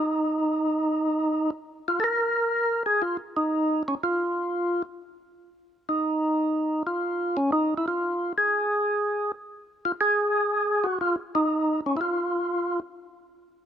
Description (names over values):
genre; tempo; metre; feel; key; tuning
jazz; 120 BPM; 4/4; swing 68% on 8ths; unclear; A4 = 440 Hz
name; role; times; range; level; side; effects
percussive tonewheel organ; solo; 0.0-12.8 s; Db4 to Bb4; -23 LUFS; equal; slow rotary speaker
room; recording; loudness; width
light reverb; none; -23 LUFS; side -9 dB against mid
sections
0.0-2.0 A section; 2.0-13.7 A section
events
none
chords
none